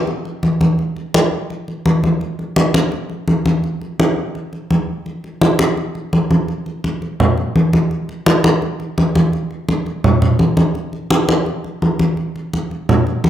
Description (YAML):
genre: latin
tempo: 168 BPM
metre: 4/4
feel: straight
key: none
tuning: none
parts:
  - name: congas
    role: percussion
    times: 0.1-13.3 s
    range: none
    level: -15 LUFS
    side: equal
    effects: none
room: wet large studio reverb, RT60 1.2 s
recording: none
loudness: -15 LUFS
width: side -11 dB against mid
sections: 0.0-6.5 A section; 6.5-13.3 B section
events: none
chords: none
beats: 0.07 0.43 | 0.79 1.14 1.50 1.86 | 2.21 2.57 2.92 3.28 | 3.64 3.99 4.35 4.71 | 5.06 5.42 5.77 6.13 | 6.49 6.84 7.20 7.55 | 7.91 8.26 8.62 8.97 | 9.33 9.69 10.04 10.40 | 10.75 11.11 11.47 11.82 | 12.18 12.53 12.89 13.25